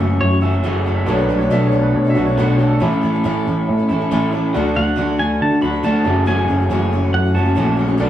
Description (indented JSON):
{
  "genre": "rock",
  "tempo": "138 BPM",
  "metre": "4/4",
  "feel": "straight",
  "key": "unclear",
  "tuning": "A4 = 440 Hz",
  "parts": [
    { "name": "pedal steel guitar", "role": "melody", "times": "0.0-0.8, 4.8-7.8 s", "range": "C#5 to B5", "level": "-23 LUFS", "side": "right 2 dB", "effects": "none" },
    { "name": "picked steel-string acoustic guitar", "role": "accompaniment", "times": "0.0-8.1 s", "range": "F#2 to A4", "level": "-24 LUFS", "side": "left 4 dB", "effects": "none" },
    { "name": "reed electric piano", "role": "accompaniment", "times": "0.0-8.1 s", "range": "E4 to F#5", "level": "-27 LUFS", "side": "right 2 dB", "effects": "overdrive" },
    { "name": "mellow tonewheel organ", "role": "sustained chords", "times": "0.0-8.1 s", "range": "A3 to A4", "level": "-27 LUFS", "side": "equal", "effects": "none" },
    { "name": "electric guitar through a small old amp", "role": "riff", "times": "0.0-8.1 s", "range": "F#2 to F#4", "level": "-20 LUFS", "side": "equal", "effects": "none" },
    { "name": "picked electric bass", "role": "bass", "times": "0.0-8.1 s", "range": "F#1 to D3", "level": "-18 LUFS", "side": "equal", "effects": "none" },
    { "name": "warm upright piano", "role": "second line", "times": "0.9-3.1 s", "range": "A4 to E5", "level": "-23 LUFS", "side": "left 1 dB", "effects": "none" }
  ],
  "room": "wet large studio reverb, RT60 0.9 s",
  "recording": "band playing live in one room, small room ambience",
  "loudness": "-14 LUFS",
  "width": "side -11 dB against mid",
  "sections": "0.0-8.1 A section",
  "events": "none",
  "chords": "0.0 F#m7; 1.1 Bm7; 2.8 A; 4.5 D; 6.1 F#m7"
}